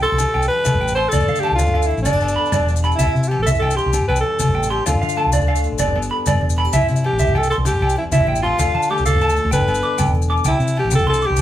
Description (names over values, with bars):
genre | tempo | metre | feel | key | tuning
highlife guitar band | 129 BPM (dotted quarters) | 12/8 | straight | C major | A4 = 440 Hz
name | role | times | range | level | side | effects
raspy alto saxophone | melody | 0.0-11.4 s | D4 to C5 | -21 LUFS | equal | none
picked steel-string acoustic guitar | accompaniment | 0.0-11.4 s | G2 to G4 | -29 LUFS | left 4 dB | none
electric guitar through a small old amp | arpeggios | 0.0-11.4 s | D5 to D6 | -22 LUFS | right 3 dB | none
hollow-body short-scale fingered electric bass | bass | 0.0-11.4 s | E1 to D3 | -20 LUFS | equal | none
maracas | percussion | 0.0-11.4 s | none | -30 LUFS | left 6 dB | none
agogo bells | percussion | 0.2-11.4 s | none | -27 LUFS | left 2 dB | none
congas | percussion | 0.2-11.4 s | none | -22 LUFS | equal | none
room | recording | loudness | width
moderate studio reverb, RT60 0.5 s | band playing live in one room | -15 LUFS | side -12 dB against mid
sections
0.0-10.5 A section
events
none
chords
0.0 C; 1.1 Dm; 2.1 G; 3.0 C; 4.9 Dm; 5.8 G; 6.7 C; 8.6 Dm; 9.5 G; 10.5 C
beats
0.19 0.66 | 1.13 1.59 2.06 2.53 | 3.00 3.46 3.93 4.40 | 4.86 5.33 5.80 6.26 | 6.73 7.20 7.66 8.13 | 8.59 9.06 9.53 9.99 | 10.46 10.92 11.39